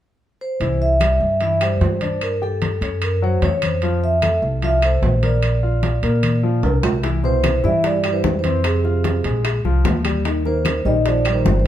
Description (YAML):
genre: Afro-Cuban jazz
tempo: 149 BPM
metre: 4/4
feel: straight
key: unclear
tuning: A4 = 439 Hz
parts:
  - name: vibraphone with soft mallets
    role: melody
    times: 0.4-11.7 s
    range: Ab4 to E5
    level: -21 LUFS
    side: right 1 dB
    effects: none
  - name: clear grand piano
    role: accompaniment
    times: 0.6-11.6 s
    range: B2 to G5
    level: -25 LUFS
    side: left 5 dB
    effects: none
  - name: upright bass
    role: bass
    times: 0.6-11.7 s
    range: G1 to Bb2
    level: -20 LUFS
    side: equal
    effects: none
  - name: congas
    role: percussion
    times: 0.6-11.7 s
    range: none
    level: -27 LUFS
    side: left 4 dB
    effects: none
  - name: timbales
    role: percussion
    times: 0.6-11.7 s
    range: none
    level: -27 LUFS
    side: right 5 dB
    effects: none
  - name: claves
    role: percussion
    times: 1.0-11.5 s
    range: none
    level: -33 LUFS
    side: left 7 dB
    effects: none
  - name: bongos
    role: percussion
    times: 7.0-11.7 s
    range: none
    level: -29 LUFS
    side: left 8 dB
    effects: none
  - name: breathy trombone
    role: second line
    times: 7.2-11.7 s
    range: C3 to G3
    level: -26 LUFS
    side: right 7 dB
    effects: none
room: light reverb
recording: band playing live in one room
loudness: -16 LUFS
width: side -11 dB against mid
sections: 0.6-7.0 A section; 7.0-11.7 B section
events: drum fill 6.2-7.0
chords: 0.0 N.C.; 0.6 Cadd9; 2.2 G5; 3.0 F#5; 3.8 Fmaj7; 5.4 Bbadd9; 7.0 Cmaj7; 8.6 Fm; 9.4 Bbsus2; 10.3 Eb6